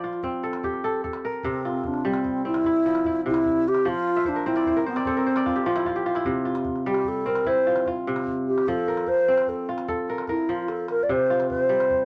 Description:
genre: west african traditional, West African string and xylophone music.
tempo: 100 BPM (dotted quarters).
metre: 12/8.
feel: straight.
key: C mixolydian.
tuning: A4 = 440 Hz.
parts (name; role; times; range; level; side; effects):
hollow wooden-headed alto flute; melody; 0.0-12.1 s; C4 to D5; -25 LUFS; equal; none.
kora; arpeggios; 0.0-12.1 s; C3 to E5; -29 LUFS; equal; none.
calabash; percussion; 0.1-12.0 s; none; -43 LUFS; equal; none.
room: light reverb.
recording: none.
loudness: -24 LUFS.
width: mono.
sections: 0.0-1.4 A section; 1.4-12.1 B section.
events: alto flute solo 1.4-12.1; kora fill 4.2-6.3; drum fill 10.5-11.1.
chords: 0.0 F; 1.4 C; 3.9 F; 6.3 C; 8.7 F; 11.1 C5.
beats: 0.24 0.84 | 1.44 2.04 2.65 3.25 | 3.85 4.46 5.06 5.66 | 6.26 6.87 7.47 8.07 | 8.68 9.28 9.88 10.49 | 11.09 11.70.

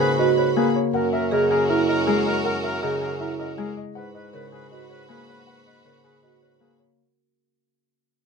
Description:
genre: classical, minimalist pattern music.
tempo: 159 BPM.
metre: 4/4.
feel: straight.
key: unclear.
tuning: A4 = 440 Hz.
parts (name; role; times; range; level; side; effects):
dark baby grand piano; melody; 0.0-7.0 s; G#4 to F#5; -28 LUFS; left 4 dB; none.
clear oboe; second line; 0.0-6.7 s; A#4 to B4; -31 LUFS; equal; none.
Celtic harp; accompaniment; 0.0-7.0 s; C#3 to A#3; -27 LUFS; left 9 dB; none.
rich studio violin section; sustained chords; 0.0-6.8 s; F#4 to B5; -33 LUFS; right 1 dB; none.
marimba with soft mallets; arpeggios; 0.0-6.8 s; E4 to B4; -24 LUFS; right 7 dB; none.
mellow bassoon; bass; 0.0-6.9 s; F#2 to G#2; -30 LUFS; right 2 dB; none.
room: light reverb.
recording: close, detailed microphones.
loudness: -20 LUFS.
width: side -5 dB against mid.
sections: 0.0-7.0 A section.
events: fade-out 0.0-7.0.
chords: 0.0 G#m9; 0.9 F#13; 4.0 G#m9.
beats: 0.18 0.56 | 0.94 1.32 1.69 2.07 | 2.45 2.83 3.20 3.58 | 3.96 4.33 4.71 5.09 | 5.47 5.84 6.22 6.60.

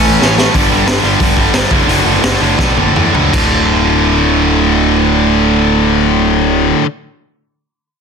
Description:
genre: punk rock.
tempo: 155-183 BPM.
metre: 4/4.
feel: straight.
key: unclear.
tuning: A4 = 440 Hz.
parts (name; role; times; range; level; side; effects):
distorted electric guitar; riff; 0.0-6.9 s; D2 to A3; -14 LUFS; right 17 dB; overdrive.
tight distorted guitar; riff; 0.0-6.9 s; D2 to A3; -14 LUFS; left 18 dB; distortion.
fuzz picked electric bass; bass; 0.0-6.7 s; D1 to E2; -17 LUFS; equal; overdrive.
raw garage drum kit; drums; 0.2-3.4 s; crash cymbal, hi-hat, kick drum, snare drum, toms; -16 LUFS; equal; none.
room: little or no reverb.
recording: dense, heavily limited modern master.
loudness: -9 LUFS.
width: side -6 dB against mid.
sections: 0.5-3.3 A section; 3.3-6.4 B section.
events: drum fill 0.2-0.5, 2.6-3.3; slowing down 0.5-3.3.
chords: 0.0 A; 0.5 G5; 1.7 D/F#; 3.3 D5.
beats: 0.21 | 0.54 0.86 1.20 1.53 | 1.88 2.22 2.58 2.95 | 3.33 3.72 4.11 4.49 | 4.88 5.26 5.65 6.04.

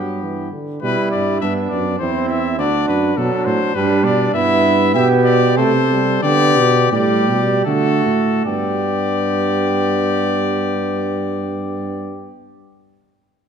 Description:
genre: classical, imitative canzona for brass ensemble.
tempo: 72-103 BPM.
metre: 3/4.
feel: straight.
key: G major.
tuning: A4 = 440 Hz.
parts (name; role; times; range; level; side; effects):
clear trumpet; melody; 0.0-12.3 s; G4 to E5; -21 LUFS; left 10 dB; none.
mellow flugelhorn; second line; 0.0-12.3 s; B3 to A4; -22 LUFS; right 5 dB; none.
warm trombone; accompaniment; 0.0-12.3 s; D3 to D4; -20 LUFS; right 1 dB; none.
mellow tuba; bass; 0.0-12.3 s; D2 to D3; -20 LUFS; right 2 dB; none.
room: wet scoring stage reverb, RT60 1.7 s.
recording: minimal, uncompressed stereo recording.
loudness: -15 LUFS.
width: side -7 dB against mid.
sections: 0.8-8.5 A section; 8.5-13.5 B section.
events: slowing down 3.5-8.5.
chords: 0.0 G; 2.0 C/E; 2.6 D; 3.7 G; 5.6 Am/C; 6.2 G; 7.7 D; 8.5 G.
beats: 0.23 | 0.82 1.41 2.00 | 2.58 3.17 3.75 | 4.34 4.94 5.57 | 6.22 6.92 7.65 | 8.45 9.29 10.12 | 10.96 11.79.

